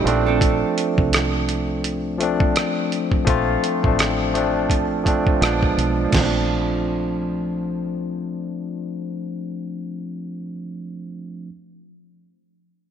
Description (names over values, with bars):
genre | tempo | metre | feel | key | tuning
R&B, neo-soul | 84 BPM | 4/4 | swing 60% on 16ths | Bb major | A4 = 440 Hz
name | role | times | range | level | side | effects
barky tine electric piano | accompaniment | 0.0-11.5 s | F3 to F4 | -22 LUFS | moving between left 5 dB and right 4 dB | overdrive, auto-pan
deep dub fingered electric bass | bass | 0.0-10.4 s | A1 to C2 | -25 LUFS | right 1 dB | none
dusty soul sampler-style drum kit | drums | 0.1-6.3 s | crash cymbal, hi-hat, kick drum, rim click, snare drum | -22 LUFS | right 1 dB | none
room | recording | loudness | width
moderate lush hall reverb, RT60 2.6 s | bright 1980s-style digital production | -19 LUFS | side -8 dB against mid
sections
0.0-6.1 A section; 6.1-9.0 B section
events
none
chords
0.1 Bbmaj9; 5.4 Bb7b9; 6.1 Bbmaj9